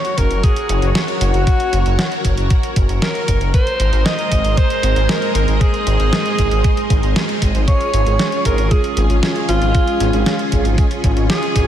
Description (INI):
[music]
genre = synthwave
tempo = 116 BPM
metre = 4/4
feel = straight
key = unclear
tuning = A4 = 440 Hz
[part]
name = warm alto saxophone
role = melody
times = 0.0-11.7 s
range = F4 to Eb5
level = -21 LUFS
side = right 1 dB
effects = slapback echo, digital delay
[part]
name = string machine, full ensemble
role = sustained chords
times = 0.0-11.7 s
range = Ab3 to Eb5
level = -22 LUFS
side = equal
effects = ensemble chorus, sidechain pumping
[part]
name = detuned 8-bit digital drum machine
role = drums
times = 0.0-11.7 s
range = hi-hat, snare drum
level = -23 LUFS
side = equal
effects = none
[part]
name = wide detuned saw bass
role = bass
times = 0.2-11.7 s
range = Gb1 to Ab1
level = -17 LUFS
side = equal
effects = chorus, sidechain pumping
[part]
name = electronic kick drum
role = drums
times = 0.2-11.7 s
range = none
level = -16 LUFS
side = equal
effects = none
[part]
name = mellow synth brass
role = stabs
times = 7.7-11.7 s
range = Bb2 to Db5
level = -24 LUFS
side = right 4 dB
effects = chorus, cassette tape, slapback echo
[sound]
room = light reverb, digital ambience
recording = none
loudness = -14 LUFS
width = side -10 dB against mid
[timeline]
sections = 0.0-11.7 A section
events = none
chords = 0.0 Gb; 3.5 Abadd9; 7.7 Db/Ab